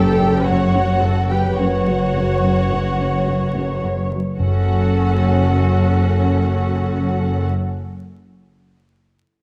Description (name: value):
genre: cinematic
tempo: 107 BPM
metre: 5/4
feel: straight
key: F# phrygian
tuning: A4 = 439 Hz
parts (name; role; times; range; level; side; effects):
- warm symphonic violin section; melody; 0.0-7.5 s; F#5 to G5; -30 LUFS; equal; none
- rich symphonic violin section; second line; 0.0-7.5 s; F#4 to G4; -29 LUFS; equal; none
- rich studio viola section; accompaniment; 0.0-7.5 s; C#4 to C#5; -26 LUFS; equal; none
- rich symphonic cello section; riff; 0.0-4.3 s; F#2 to F#3; -26 LUFS; equal; none
- rich symphonic cello section; bass; 0.0-7.5 s; F#2; -23 LUFS; equal; none
- rich symphonic double bass section; bass; 0.0-7.5 s; F#1; -23 LUFS; equal; none
- vibraphone with medium mallets; texture; 0.0-4.4 s; B4; -31 LUFS; equal; none
- timpani; percussion; 4.4-7.5 s; F#2; -24 LUFS; equal; none
room: moderate scoring stage reverb, RT60 1.6 s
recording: vinyl crackle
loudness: -18 LUFS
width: mono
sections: 0.0-4.4 A section; 4.4-7.2 B section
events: none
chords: 0.0 F#m